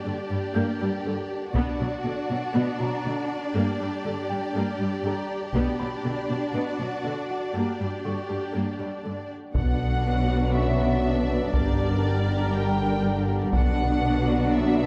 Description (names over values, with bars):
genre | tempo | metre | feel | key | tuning
cinematic, hybrid orchestral and electronic film score | 120 BPM | 4/4 | straight | B harmonic minor | A4 = 440 Hz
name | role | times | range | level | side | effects
warm symphonic violin section | second line | 0.0-14.9 s | F#4 to D5 | -35 LUFS | equal | none
warm symphonic viola section | accompaniment | 0.0-14.9 s | D3 to Bb4 | -32 LUFS | equal | none
warm concert grand piano | texture | 0.0-14.9 s | B3 to G6 | -39 LUFS | equal | tape echo
warm symphonic cello section | bass | 0.1-14.9 s | G2 to B2 | -31 LUFS | equal | none
taiko ensemble | drums | 1.5-2.5, 5.5-6.5, 9.5-14.0 s | none | -29 LUFS | equal | none
clear trombone section | sustained chords | 9.5-14.9 s | B2 to G3 | -35 LUFS | equal | none
mellow French horn section | sustained chords | 9.5-14.9 s | D3 to D4 | -32 LUFS | equal | none
rich symphonic violin section | melody | 9.6-14.9 s | D5 to G5 | -34 LUFS | equal | none
warm symphonic double bass section | bass | 9.6-14.9 s | G1 to B1 | -30 LUFS | equal | none
room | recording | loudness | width
moderate scoring stage reverb, RT60 1.8 s | dark, warm production | -26 LUFS | mono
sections
0.0-9.5 A section; 9.5-14.9 B section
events
build-up 0.0-9.5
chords
0.0 Gm; 1.5 Bm; 3.5 Gm; 5.5 Bm; 7.5 Gm; 9.5 Bm; 11.5 Gm; 13.5 Bm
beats
0.05 0.55 1.05 | 1.55 2.05 2.55 3.05 | 3.55 4.05 4.55 5.05 | 5.55 6.05 6.55 7.05 | 7.55 8.05 8.55 9.05 | 9.55 10.05 10.55 11.05 | 11.55 12.05 12.55 13.05 | 13.55 14.05 14.55